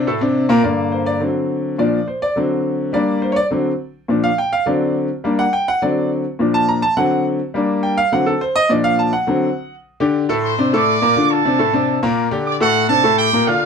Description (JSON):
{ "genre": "latin", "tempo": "208 BPM", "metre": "4/4", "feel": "straight", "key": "G harmonic minor", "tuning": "A4 = 440 Hz", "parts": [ { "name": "bright grand piano", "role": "accompaniment", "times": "0.0-13.7 s", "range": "G2 to Bb5", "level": "-16 LUFS", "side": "left 1 dB", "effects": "none" }, { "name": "bright trumpet section", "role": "melody", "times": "10.4-13.7 s", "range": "F#4 to D6", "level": "-16 LUFS", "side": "right 5 dB", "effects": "none" } ], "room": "moderate small room reverb, RT60 0.5 s", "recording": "faint mains hum", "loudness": "-15 LUFS", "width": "side -6 dB against mid", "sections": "0.6-9.9 A section; 9.9-13.7 B section", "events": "grand piano solo 0.6-9.9", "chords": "0.1 D5; 0.6 Gm; 1.2 D7; 1.8 Bb; 2.4 D7; 2.9 Gm; 3.5 D7; 4.1 Bb; 4.7 D7; 5.2 Gm; 5.8 D7; 6.4 Bb; 7.0 D7; 7.5 Gm; 8.1 D7; 8.7 Bb; 9.3 D7; 9.9 G5; 10.4 D5; 11.0 Bb; 11.6 D5; 12.2 Gm; 12.7 D7" }